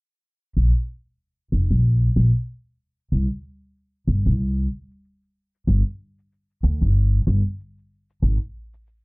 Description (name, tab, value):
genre	sunset chillout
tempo	94 BPM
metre	4/4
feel	swing 57% on 16ths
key	unclear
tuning	A4 = 442 Hz
part	upright bass	bass	0.6-8.4 s	F1 to D2	-18 LUFS	equal	tube saturation
part	shaker	drums	0.6-9.0 s	none	-78 LUFS	left 4 dB	none
room	studio reverb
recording	dark, warm production, low-pass filter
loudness	-19 LUFS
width	side -36 dB against mid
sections	0.6-9.0 A section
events	filter sweep on upright bass 0.6-9.0; filter sweep 0.6-9.0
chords	none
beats	| 0.56 1.20 1.84 2.48 | 3.12 3.76 4.39 5.03 | 5.67 6.31 6.95 7.59 | 8.22 8.86